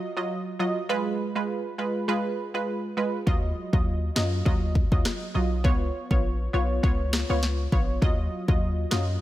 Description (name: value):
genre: dancehall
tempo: 101 BPM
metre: 4/4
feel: swing 56% on 16ths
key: Eb minor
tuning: A4 = 439 Hz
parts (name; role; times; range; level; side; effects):
- analog pluck; accompaniment; 0.0-9.2 s; Gb3 to Eb5; -28 LUFS; right 2 dB; chorus, sidechain pumping
- warm 808-style bass; bass; 3.3-9.2 s; Bb1 to Gb2; -26 LUFS; equal; none
- afro-pop drum kit; drums; 3.3-9.1 s; kick drum, rim click, snare drum; -25 LUFS; equal; none
room: digital ambience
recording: none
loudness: -23 LUFS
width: side -14 dB against mid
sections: 0.0-9.2 A section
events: none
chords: 0.0 Ebmadd9; 0.9 Fdim; 3.3 Ebmadd9; 5.6 Db7; 8.0 Ebmadd9